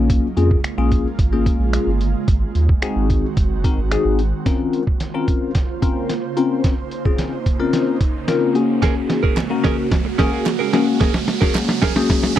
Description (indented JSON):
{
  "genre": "dance-pop",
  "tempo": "110 BPM",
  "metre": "4/4",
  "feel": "straight",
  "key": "Bb minor",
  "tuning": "A4 = 440 Hz",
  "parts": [
    { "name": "bell-like tine electric piano", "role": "accompaniment", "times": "0.0-12.3 s", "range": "Bb3 to Bb4", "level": "-20 LUFS", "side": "left 6 dB", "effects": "phaser, sidechain pumping" },
    { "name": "ethereal airy pad", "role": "sustained chords", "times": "0.0-12.4 s", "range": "Db3 to C5", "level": "-26 LUFS", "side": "right 6 dB", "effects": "ensemble chorus, built-in reverb, sidechain pumping" },
    { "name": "round analog bass", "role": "bass", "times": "0.0-4.3 s", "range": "Gb1 to F2", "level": "-18 LUFS", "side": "right 1 dB", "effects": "sidechain pumping" },
    { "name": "lo-fi sampler-style drum kit", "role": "drums", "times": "0.1-12.4 s", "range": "finger snaps, hi-hat, kick drum, snare drum", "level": "-19 LUFS", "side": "right 1 dB", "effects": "none" },
    { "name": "riser", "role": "sound effects", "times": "6.3-12.4 s", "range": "none", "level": "-32 LUFS", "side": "right 4 dB", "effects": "none" },
    { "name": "direct-recorded clean electric guitar", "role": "riff", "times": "8.8-12.4 s", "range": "Db4 to Bb4", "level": "-23 LUFS", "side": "right 9 dB", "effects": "wide subtle chorus" },
    { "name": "group handclap", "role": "percussion", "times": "9.4-11.7 s", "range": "none", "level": "-29 LUFS", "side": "right 23 dB", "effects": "none" }
  ],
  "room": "little or no reverb",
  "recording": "dry, close 1970s-style studio recording",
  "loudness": "-16 LUFS",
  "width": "side -12 dB against mid",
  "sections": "0.0-4.5 A section; 4.5-12.4 B section",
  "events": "build-up 4.5-12.4; drum fill 4.5-12.4; riser 6.3-12.4",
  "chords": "0.0 Bbm7; 2.3 Ab7; 4.5 Bbmadd9; 8.6 Gbadd9"
}